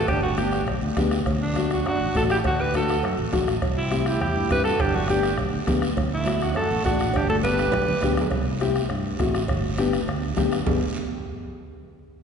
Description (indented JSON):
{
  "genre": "latin, cumbia",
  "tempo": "204 BPM",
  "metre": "4/4",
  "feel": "straight",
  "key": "G major",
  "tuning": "A4 = 440 Hz",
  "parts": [
    { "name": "clear alto saxophone", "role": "melody", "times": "0.0-8.1 s", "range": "D4 to B4", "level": "-26 LUFS", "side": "right 1 dB", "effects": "none" },
    { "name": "accordion", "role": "second line", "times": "0.0-8.1 s", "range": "A3 to G4", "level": "-32 LUFS", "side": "right 6 dB", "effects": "none" },
    { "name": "fingered electric bass", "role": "bass", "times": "0.0-10.8 s", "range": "G1 to G2", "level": "-28 LUFS", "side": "right 1 dB", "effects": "none" },
    { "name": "bombo", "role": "percussion", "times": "0.1-10.7 s", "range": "none", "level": "-29 LUFS", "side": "right 1 dB", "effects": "none" },
    { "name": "cowbell and timbales", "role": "percussion", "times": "0.1-10.7 s", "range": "none", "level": "-36 LUFS", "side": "right 5 dB", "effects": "none" },
    { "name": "guiro", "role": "percussion", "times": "0.1-10.7 s", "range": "none", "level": "-39 LUFS", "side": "right 4 dB", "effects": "none" },
    { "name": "nylon-string guitar", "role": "accompaniment", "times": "0.4-10.8 s", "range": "A3 to G4", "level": "-27 LUFS", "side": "left 5 dB", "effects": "none" },
    { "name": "congas", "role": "percussion", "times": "0.4-10.7 s", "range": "none", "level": "-32 LUFS", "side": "left 2 dB", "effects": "none" }
  ],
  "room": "wet concert hall reverb, RT60 2.5 s",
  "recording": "recorded in a church or concert hall, nothing above 11.0 kHz",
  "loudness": "-21 LUFS",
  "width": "side -6 dB against mid",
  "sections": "0.0-8.3 A section; 8.3-10.7 B section; 10.7-11.8 C section",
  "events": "drum fill 7.1-8.3",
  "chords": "0.1 G; 1.3 D; 3.6 C; 4.8 G; 6.0 D; 7.1 G; 8.3 C; 9.5 G",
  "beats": "| 0.09 0.38 0.68 0.97 | 1.26 1.56 1.85 2.15 | 2.44 2.74 3.03 3.33 | 3.62 3.91 4.21 4.50 | 4.79 5.09 5.38 5.67 | 5.97 6.26 6.55 6.85 | 7.14 7.43 7.73 8.02 | 8.31 8.61 8.90 9.20 | 9.49 9.78 10.07 10.37 | 10.66"
}